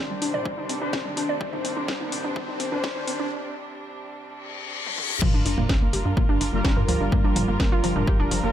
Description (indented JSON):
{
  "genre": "melodic techno",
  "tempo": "126 BPM",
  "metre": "4/4",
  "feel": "straight",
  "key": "G minor",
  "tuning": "A4 = 438 Hz",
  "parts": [
    { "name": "dark studio string section", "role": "sustained chords", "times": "0.0-8.5 s", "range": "C3 to Bb4", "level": "-33 LUFS", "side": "right 2 dB", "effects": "sidechain pumping" },
    { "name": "warbly dusty pluck", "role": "arpeggios", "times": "0.0-8.5 s", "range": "F3 to D5", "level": "-28 LUFS", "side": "equal", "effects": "chorus, sidechain pumping, tape echo" },
    { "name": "analog synth brass", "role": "stabs", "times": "0.0-3.3, 6.5-8.5 s", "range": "Eb3 to C5", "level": "-30 LUFS", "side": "left 3 dB", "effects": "chorus, cassette tape, sidechain pumping, tape echo" },
    { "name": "analog drone", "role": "drone", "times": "0.1-3.3 s", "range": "G2 to D4", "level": "-44 LUFS", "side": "left 2 dB", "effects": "none" },
    { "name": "riser, reverse cymbal and sub drop", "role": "sound effects", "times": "1.4-7.1 s", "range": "none", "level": "-33 LUFS", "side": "left 2 dB", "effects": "none" },
    { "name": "techno drum kit", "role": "drums", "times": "0.2-8.4 s", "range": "crash cymbal, hi-hat, snare drum, toms", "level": "-30 LUFS", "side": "equal", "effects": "none" },
    { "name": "electronic kick drum", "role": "drums", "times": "0.5-8.2 s", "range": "none", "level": "-24 LUFS", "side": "equal", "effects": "none" },
    { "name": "tight sequencer bass", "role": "bass", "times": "5.2-8.5 s", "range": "F1 to G2", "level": "-27 LUFS", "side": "equal", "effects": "tube saturation, sidechain pumping" }
  ],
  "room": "light reverb, digital ambience",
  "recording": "high-pass filter",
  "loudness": "-22 LUFS",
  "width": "side -11 dB against mid",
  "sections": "0.0-5.2 A section; 5.2-8.5 B section",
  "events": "build-up 0.0-5.2; filter sweep on synth arpeggio sound 0.0-5.2; filter sweep 0.0-5.2; riser 1.4-3.3; break 3.3-5.2; reverse cymbal 4.4-5.2; drum fill 4.9-5.2; drop 5.2-8.5; impact 5.2-7.1",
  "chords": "0.0 Cmadd9; 5.2 Gm7"
}